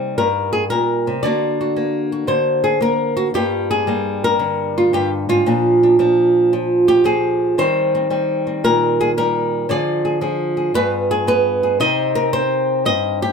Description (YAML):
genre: solo jazz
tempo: 114 BPM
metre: 4/4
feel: swing 67% on 8ths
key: C minor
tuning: A4 = 444 Hz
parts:
  - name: flamenco guitar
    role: solo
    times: 0.0-13.3 s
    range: G2 to Eb5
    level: -15 LUFS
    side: equal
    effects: none
room: little or no reverb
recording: close, detailed microphones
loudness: -15 LUFS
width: side -5 dB against mid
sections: 0.0-13.3 A section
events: none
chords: 0.0 Cm7; 1.2 Daug7; 3.3 Gm7; 5.5 Bb6; 7.6 Eb6; 9.7 Ddim; 10.7 G7b9; 11.8 Cm7